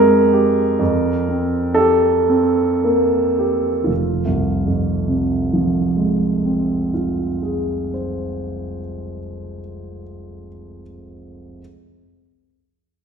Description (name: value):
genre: classical, impressionist solo piano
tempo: 26-35 BPM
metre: 3/4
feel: rubato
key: F minor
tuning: A4 = 440 Hz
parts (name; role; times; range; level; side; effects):
- warm baby grand piano; solo; 0.0-11.6 s; F1 to C5; -16 LUFS; right 1 dB; none
room: wet recital hall reverb, RT60 1.6 s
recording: recorded in a church or concert hall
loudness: -16 LUFS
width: side -6 dB against mid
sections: 0.0-3.9 A section; 3.9-9.4 B section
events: slowing down 0.0-3.9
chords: 0.0 Fmadd9; 0.8 Gm11/F; 3.9 Fm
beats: 1.78 | 3.90 5.71 7.53